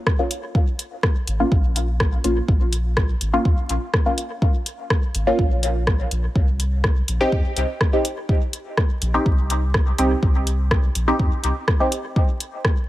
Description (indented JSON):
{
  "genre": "dub techno",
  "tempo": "124 BPM",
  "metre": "4/4",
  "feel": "straight",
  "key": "Bb dorian",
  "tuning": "A4 = 444 Hz",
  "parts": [
    { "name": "deep house drum kit", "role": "drums", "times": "0.1-12.7 s", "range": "hi-hat, rim click", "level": "-25 LUFS", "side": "equal", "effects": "dub echo" },
    { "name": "electronic kick drum", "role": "drums", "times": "0.1-12.7 s", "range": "none", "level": "-19 LUFS", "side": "equal", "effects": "none" },
    { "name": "filtered dub chord stab", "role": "stabs", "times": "0.2-11.9 s", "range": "Bb3 to G4", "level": "-23 LUFS", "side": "equal", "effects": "chorus, phaser, sidechain pumping, dub echo" },
    { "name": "soft dub sub bass", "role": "bass", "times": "1.3-11.5 s", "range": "Ab1 to F2", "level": "-22 LUFS", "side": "equal", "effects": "sidechain pumping" }
  ],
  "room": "light reverb",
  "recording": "vinyl crackle",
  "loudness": "-18 LUFS",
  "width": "side -15 dB against mid",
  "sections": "0.0-12.9 A section",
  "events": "none",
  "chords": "0.0 Bbm; 6.4 Cm"
}